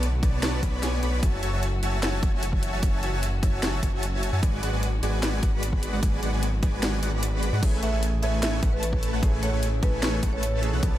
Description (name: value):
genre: future bass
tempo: 150 BPM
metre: 4/4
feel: half-time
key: unclear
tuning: A4 = 442 Hz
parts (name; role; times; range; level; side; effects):
- dark studio string section; sustained chords; 0.0-11.0 s; C#3 to F#4; -38 LUFS; left 2 dB; sidechain pumping
- dense compressed supersaw; riff; 0.0-11.0 s; G#3 to B5; -30 LUFS; equal; sidechain pumping, digital delay
- wide detuned saw bass; bass; 0.0-11.0 s; F#1 to G#2; -27 LUFS; equal; chorus, sidechain pumping
- trap drum kit; drums; 0.0-10.9 s; crash cymbal, hi-hat, snare drum; -31 LUFS; equal; overdrive, studio reverb
- electronic kick drum; drums; 0.2-10.9 s; none; -24 LUFS; equal; overdrive, studio reverb
- warm concert grand piano; accompaniment; 7.6-11.0 s; E3 to A4; -35 LUFS; right 3 dB; sidechain pumping
- marimba with hard mallets; melody; 7.8-10.5 s; B4 to E5; -33 LUFS; right 2 dB; sidechain pumping, tape echo
room: little or no reverb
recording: none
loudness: -23 LUFS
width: side -13 dB against mid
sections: 0.0-11.0 A section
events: kick drops out 6.8-7.6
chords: 0.0 Bm7; 1.2 F#m7; 4.4 G#m7b5; 7.6 Amaj7